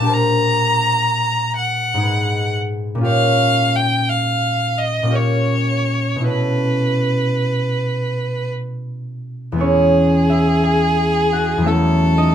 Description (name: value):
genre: classical, impressionist duo for violin and harp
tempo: 52-62 BPM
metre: 3/4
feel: rubato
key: E lydian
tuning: A4 = 440 Hz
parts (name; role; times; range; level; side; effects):
- rich violin; melody; 0.0-12.3 s; G#4 to A#5; -19 LUFS; equal; none
- concert harp; accompaniment; 0.0-12.3 s; E2 to G#5; -17 LUFS; equal; none
room: light reverb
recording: close, detailed microphones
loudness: -15 LUFS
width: side -9 dB against mid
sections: 0.0-9.6 A section; 9.6-12.3 A section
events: none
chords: 0.1 A#69; 2.1 G#m7; 3.1 A#m6; 6.3 B9sus4; 11.7 B9sus4/E